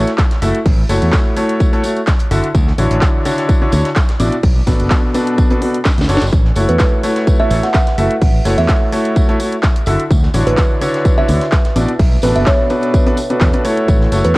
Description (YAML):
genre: piano house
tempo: 127 BPM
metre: 4/4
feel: swing 54% on 16ths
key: A major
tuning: A4 = 441 Hz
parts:
  - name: bright grand piano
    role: riff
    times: 0.0-14.4 s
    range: B2 to E5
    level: -17 LUFS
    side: equal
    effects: sidechain pumping, cassette tape, tape echo
  - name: modern bright fingered electric bass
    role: bass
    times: 0.0-14.3 s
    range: F#1 to E2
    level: -16 LUFS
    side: equal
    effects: sidechain pumping
  - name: crisp fusion drum kit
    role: drums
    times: 0.1-14.4 s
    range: hi-hat, snare drum, tambourine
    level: -30 LUFS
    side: equal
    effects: high-pass filter on hats, cassette tape, high-pass filter on snare, high-pass filter on perc, high-pass filter on room
  - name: house drum kit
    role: drums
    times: 0.1-14.4 s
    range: handclaps, hi-hat, snare drum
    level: -24 LUFS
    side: equal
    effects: overdrive, cassette tape
  - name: electronic kick drum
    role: drums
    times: 0.2-14.4 s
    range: none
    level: -13 LUFS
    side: equal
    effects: overdrive, cassette tape
  - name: kalimba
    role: melody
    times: 6.7-14.4 s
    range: B4 to F#5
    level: -20 LUFS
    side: right 2 dB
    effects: cassette tape, tape echo
room: studio ambience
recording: home recording on cassette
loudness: -11 LUFS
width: side -21 dB against mid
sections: 0.0-14.4 A section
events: drum fill 5.9-6.3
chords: 0.0 A6; 2.5 Dmaj9; 4.4 Bm7; 6.3 A6; 10.1 Dmaj9; 12.0 Bm7